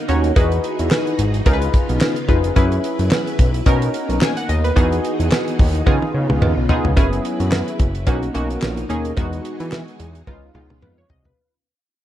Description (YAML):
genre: early-eighties boogie funk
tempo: 109 BPM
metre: 4/4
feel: swing 56% on 16ths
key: unclear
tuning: A4 = 440 Hz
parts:
  - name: string machine, violins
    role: sustained chords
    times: 0.0-11.4 s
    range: B2 to B4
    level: -27 LUFS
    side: equal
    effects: ensemble chorus
  - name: funky polysynth comp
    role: accompaniment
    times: 0.1-11.5 s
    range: G#3 to G#5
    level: -22 LUFS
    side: left 1 dB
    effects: chorus
  - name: fat analog bass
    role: bass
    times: 0.1-11.3 s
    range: E#1 to E3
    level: -20 LUFS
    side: equal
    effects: none
  - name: damped 70s drum kit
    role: drums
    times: 0.1-11.4 s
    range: handclaps, hi-hat, kick drum, snare drum, toms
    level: -18 LUFS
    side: equal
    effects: none
  - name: cowbell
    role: percussion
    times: 0.4-11.0 s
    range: none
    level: -27 LUFS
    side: right 7 dB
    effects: none
room: light reverb, studio reverb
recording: dark, warm production, lossy compression artefacts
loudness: -16 LUFS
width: side -12 dB against mid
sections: 0.0-7.0 A section; 7.0-11.4 B section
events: drum fill 5.9-7.0, 10.3-11.4; fade-out 7.0-11.4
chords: 0.4 Emaj9; 1.5 C#9; 2.6 F#7sus4; 3.7 Bmaj7; 4.8 Emaj9; 5.9 C#9; 7.0 F#7sus4; 8.1 Bmaj7; 9.2 Emaj9; 10.3 C#9